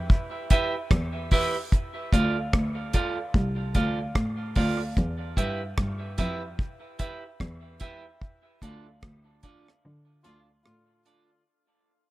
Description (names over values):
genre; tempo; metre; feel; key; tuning
dub reggae; 74 BPM; 4/4; swing 62% on 16ths; unclear; A4 = 440 Hz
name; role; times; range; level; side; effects
dark cello; bass; 0.0-11.0 s; C2 to D3; -29 LUFS; equal; none
deep reggae drum kit; drums; 0.1-11.3 s; hi-hat, kick drum, rim click; -24 LUFS; equal; none
clean electric guitar; accompaniment; 0.5-11.3 s; D4 to F5; -31 LUFS; right 3 dB; dub echo
warm horn section; second line; 10.2-11.4 s; D3 to F4; -67 LUFS; left 2 dB; dub echo
room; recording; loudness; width
light reverb, small room ambience; echo-heavy mix; -24 LUFS; side -18 dB against mid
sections
0.0-11.5 A section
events
fade-out 0.0-11.5; band accent 8.2-11.5; break 9.8-11.5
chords
0.0 Em; 1.7 Dm; 5.0 Em; 8.2 Dm